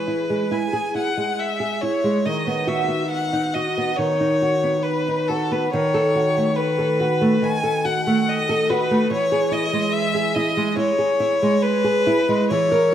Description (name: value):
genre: romantic duo for violin and classical guitar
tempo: 70 BPM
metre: 4/4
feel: rubato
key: E major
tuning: A4 = 441 Hz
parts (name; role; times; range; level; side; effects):
- clear violin; melody; 0.0-12.9 s; A4 to G#5; -21 LUFS; left 2 dB; none
- nylon-string guitar; accompaniment; 0.0-12.9 s; D#3 to A#4; -21 LUFS; right 2 dB; lush chorus
room: moderate plate reverb, RT60 2.7 s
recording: dreamy mix soaked in reverb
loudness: -18 LUFS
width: side -10 dB against mid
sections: 0.0-12.9 A section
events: none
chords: 0.0 E; 2.3 B/D#; 5.7 B7/D#; 9.1 E